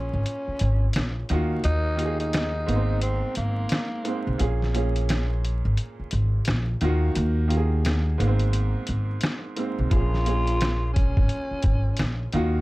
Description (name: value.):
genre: hip hop, boom-bap hip-hop.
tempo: 87 BPM.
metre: 4/4.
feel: swing 61% on 16ths.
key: Bb minor.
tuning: A4 = 438 Hz.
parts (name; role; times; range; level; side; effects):
growling tenor saxophone; melody; 0.0-4.4, 9.9-12.1 s; Bb3 to F4; -31 LUFS; equal; high-pass filter, low-pass filter, tape echo.
bright upright piano; accompaniment; 0.0-12.6 s; Ab2 to Ab4; -30 LUFS; right 2 dB; high-pass filter, low-pass filter.
upright bass; bass; 0.0-12.6 s; Ab1 to Eb2; -24 LUFS; equal; none.
trip hop sampler-style drum kit; drums; 0.3-12.5 s; hi-hat, kick drum, rim click, snare drum; -26 LUFS; equal; none.
room: little or no reverb.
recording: dark, warm production, vinyl crackle.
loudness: -22 LUFS.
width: side -20 dB against mid.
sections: 0.0-12.6 A section.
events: break 0.0-9.9; kick muted 7.2-9.9.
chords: 0.0 Bbm7; 1.3 Ebmadd9; 2.7 Abadd9; 4.4 Bbm7; 6.8 Ebmadd9; 8.2 Abadd9; 9.9 Bbm7.